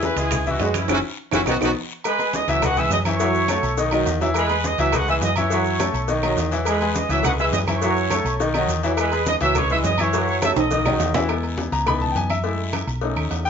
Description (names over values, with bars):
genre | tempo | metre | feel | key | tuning
latin, salsa | 208 BPM | 4/4 | straight | unclear | A4 = 439 Hz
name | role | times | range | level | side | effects
warm horn section | melody | 0.0-1.7 s | B3 to B4 | -25 LUFS | right 1 dB | none
clear trombone section | second line | 0.0-11.2 s | B2 to G#3 | -27 LUFS | right 3 dB | none
bright grand piano | accompaniment | 0.0-13.5 s | D#3 to B5 | -24 LUFS | left 3 dB | none
hollow-body short-scale fingered electric bass | bass | 0.0-13.5 s | F#1 to F#2 | -25 LUFS | equal | none
bongos and cowbell | percussion | 0.0-13.5 s | none | -31 LUFS | left 8 dB | none
congas | percussion | 0.0-13.5 s | none | -30 LUFS | equal | none
guiro | percussion | 0.0-13.5 s | none | -37 LUFS | left 6 dB | none
maracas | percussion | 0.0-11.3 s | none | -37 LUFS | right 11 dB | none
timbales and agogo bells | percussion | 0.0-13.5 s | none | -29 LUFS | right 4 dB | none
claves | percussion | 0.3-13.3 s | none | -33 LUFS | right 8 dB | none
clear trumpet section | melody | 2.1-11.0 s | F#4 to E6 | -23 LUFS | right 2 dB | none
room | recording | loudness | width
moderate studio ambience, RT60 0.5 s | nothing above 7.6 kHz | -18 LUFS | side -7 dB against mid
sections
0.0-2.0 A section; 2.0-11.3 B section; 11.3-13.5 C section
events
band accent 0.9-2.0; drum fill 1.3-2.0, 10.6-11.3; grand piano solo 11.3-13.5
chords
0.3 C#m7; 0.9 F#5; 1.5 B; 2.0 C#m7; 3.2 F#m7; 3.8 B; 4.4 C#m7; 5.5 F#m7; 6.1 B; 6.7 C#m7; 7.8 F#m7; 8.4 B; 9.0 C#m7; 10.1 F#m7; 10.7 B; 11.3 E; 11.9 C#m7; 12.4 F#m7